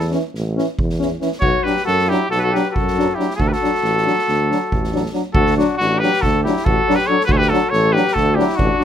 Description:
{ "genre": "balkan folk, Balkan brass band", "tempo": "276 BPM (eighths)", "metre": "9/8", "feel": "straight", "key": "D major", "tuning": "A4 = 439 Hz", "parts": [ { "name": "clear trumpet", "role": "melody", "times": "0.0-8.8 s", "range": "F#4 to C#5", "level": "-19 LUFS", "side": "right 1 dB", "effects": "none" }, { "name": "mellow flugelhorn", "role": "second line", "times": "0.0-8.8 s", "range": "D4 to A4", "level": "-22 LUFS", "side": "left 7 dB", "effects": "none" }, { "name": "warm tuba", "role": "bass", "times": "0.0-8.7 s", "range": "A1 to F#2", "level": "-21 LUFS", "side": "right 2 dB", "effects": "none" }, { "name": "street-band drum kit", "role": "percussion", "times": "0.0-8.8 s", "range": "kick drum, snare drum", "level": "-24 LUFS", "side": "right 1 dB", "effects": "none" }, { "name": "clear French horn", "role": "accompaniment", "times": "0.1-8.8 s", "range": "C#4 to D4", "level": "-22 LUFS", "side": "left 6 dB", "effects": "none" }, { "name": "clear euphonium", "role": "accompaniment", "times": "0.1-8.8 s", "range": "E3 to F#3", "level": "-24 LUFS", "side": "right 5 dB", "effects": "none" } ], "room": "light reverb", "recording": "none", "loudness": "-15 LUFS", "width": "side -9 dB against mid", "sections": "0.0-5.3 A section; 5.3-8.8 B section", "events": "speeding up 0.0-8.8", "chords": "0.0 A; 1.4 Bm; 3.4 D" }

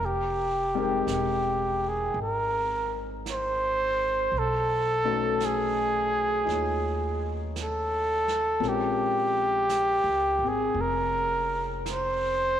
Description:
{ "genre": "jazz ballad", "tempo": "56 BPM", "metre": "4/4", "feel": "swing 69% on 8ths", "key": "F minor", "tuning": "A4 = 440 Hz", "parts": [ { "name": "breathy trumpet", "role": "melody", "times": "0.0-12.6 s", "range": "G4 to C5", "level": "-25 LUFS", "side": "right 1 dB", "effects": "none" }, { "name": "upright bass", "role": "bass", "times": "0.0-12.6 s", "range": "E1 to D#2", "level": "-35 LUFS", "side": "right 1 dB", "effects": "none" }, { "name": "warm baby grand piano", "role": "accompaniment", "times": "0.7-12.6 s", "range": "Ab3 to G5", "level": "-33 LUFS", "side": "left 8 dB", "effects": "none" }, { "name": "jazz brush drum kit", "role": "drums", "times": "1.1-12.6 s", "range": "brushed snare drum, hi-hat, snare drum", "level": "-43 LUFS", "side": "right 8 dB", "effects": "none" } ], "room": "wet plate reverb, RT60 2.8 s", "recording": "1960s-style stereo with parts hard left and right", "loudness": "-24 LUFS", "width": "side -10 dB against mid", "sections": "0.0-12.6 A section", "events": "none", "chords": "0.0 Fm11; 4.3 B9; 8.6 Bbm7" }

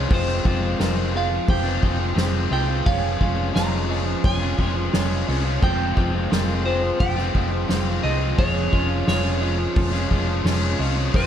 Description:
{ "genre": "post-rock", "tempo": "87 BPM", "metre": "4/4", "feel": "straight", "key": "unclear", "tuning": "A4 = 440 Hz", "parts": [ { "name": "pedal steel guitar", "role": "sustained chords", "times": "0.0-11.3 s", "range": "F3 to G5", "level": "-36 LUFS", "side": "right 3 dB", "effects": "none" }, { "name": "felt-muted upright piano", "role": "arpeggios", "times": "0.0-11.3 s", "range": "Ab4 to F5", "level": "-38 LUFS", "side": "right 3 dB", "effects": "none" }, { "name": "twangy electric guitar", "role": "arpeggios", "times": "0.0-11.3 s", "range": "F3 to G4", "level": "-36 LUFS", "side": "left 1 dB", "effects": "digital delay" }, { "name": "overdriven electric guitar", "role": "riff", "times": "0.0-11.3 s", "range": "F3 to F4", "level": "-28 LUFS", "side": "left 12 dB", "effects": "none" }, { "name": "overdriven electric guitar", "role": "riff", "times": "0.0-11.3 s", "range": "F3 to F4", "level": "-29 LUFS", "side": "right 12 dB", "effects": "none" }, { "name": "hollow-body short-scale fingered electric bass", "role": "bass", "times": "0.0-11.3 s", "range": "F1 to C2", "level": "-24 LUFS", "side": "equal", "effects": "none" }, { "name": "clean electric guitar", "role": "melody", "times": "0.1-11.3 s", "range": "C5 to Bb5", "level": "-28 LUFS", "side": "right 2 dB", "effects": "spring reverb, digital delay" }, { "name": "soft-mallet drum kit", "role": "drums", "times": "0.1-11.3 s", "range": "crash cymbal, kick drum, ride cymbal, snare drum", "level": "-24 LUFS", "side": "equal", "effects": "none" } ], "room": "studio reverb", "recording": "none", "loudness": "-19 LUFS", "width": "side -9 dB against mid", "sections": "0.0-11.3 A section", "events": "none", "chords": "0.1 Fmadd9; 2.9 Db/F; 5.6 Fmadd9; 8.4 Db/F" }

